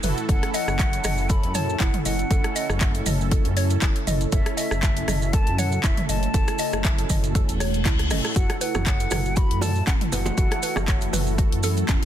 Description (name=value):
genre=afro house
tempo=119 BPM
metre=4/4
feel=swing 54% on 16ths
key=unclear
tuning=A4 = 440 Hz
part: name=ethereal airy pad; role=sustained chords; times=0.0-12.1 s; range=C#3 to F#4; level=-33 LUFS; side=equal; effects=ensemble chorus, built-in reverb, phaser, sidechain pumping
part: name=mallet-like synth pluck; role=arpeggios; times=0.0-12.0 s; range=C#4 to E5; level=-32 LUFS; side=left 1 dB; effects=chorus, phaser, sidechain pumping, dub echo
part: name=mellow synth brass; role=stabs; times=0.0-12.1 s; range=C#4 to A4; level=-32 LUFS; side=right 6 dB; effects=chorus, phaser, sidechain pumping, dub echo
part: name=dark detuned saw bass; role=bass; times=0.0-12.0 s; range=E1 to F#2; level=-26 LUFS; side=equal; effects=tube saturation, sidechain pumping
part: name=house drum kit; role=drums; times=0.0-12.1 s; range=handclaps, hi-hat, rim click, toms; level=-29 LUFS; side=equal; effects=overdrive
part: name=maracas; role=percussion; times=0.0-12.0 s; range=none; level=-34 LUFS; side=right 8 dB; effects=none
part: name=mellow hollow silver concert flute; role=melody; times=0.3-11.1 s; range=E5 to B5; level=-32 LUFS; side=left 1 dB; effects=dub echo
part: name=electronic kick drum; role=drums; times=0.3-12.0 s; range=none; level=-22 LUFS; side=equal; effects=overdrive
part: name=reverse cymbal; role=sound effects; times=7.5-8.4 s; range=none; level=-32 LUFS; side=left 4 dB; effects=none
part: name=bongos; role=percussion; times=8.5-12.0 s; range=none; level=-33 LUFS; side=right 4 dB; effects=none
room=digital ambience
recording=dense, heavily limited modern master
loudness=-20 LUFS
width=side -11 dB against mid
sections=0.0-12.1 A section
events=reverse cymbal 7.5-8.4; drum fill 8.0-8.4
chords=0.3 A; 8.4 F#m7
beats=| 0.29 0.79 1.30 1.80 | 2.31 2.81 3.31 3.82 | 4.32 4.83 5.33 5.84 | 6.34 6.84 7.35 7.85 | 8.36 8.86 9.37 9.87 | 10.37 10.88 11.38 11.89